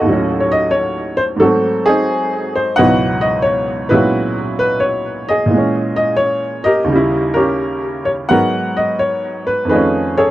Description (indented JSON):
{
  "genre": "solo jazz",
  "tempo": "88 BPM",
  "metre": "4/4",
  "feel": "swing 68% on 8ths, rubato",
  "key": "G# minor",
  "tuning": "A4 = 442 Hz",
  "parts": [
    { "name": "clear upright piano", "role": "solo", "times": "0.0-10.3 s", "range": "C#2 to F#5", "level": "-13 LUFS", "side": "equal", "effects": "none" }
  ],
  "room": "light reverb",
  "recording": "dry, close 1970s-style studio recording",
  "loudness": "-13 LUFS",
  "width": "side -15 dB against mid",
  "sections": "0.0-10.3 A section",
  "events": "none",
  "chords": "0.1 D#m7b5; 1.4 G#7b9; 2.8 C#m11; 5.5 A#m7b5; 6.9 D#7b9; 8.3 G#m9; 9.7 F7alt"
}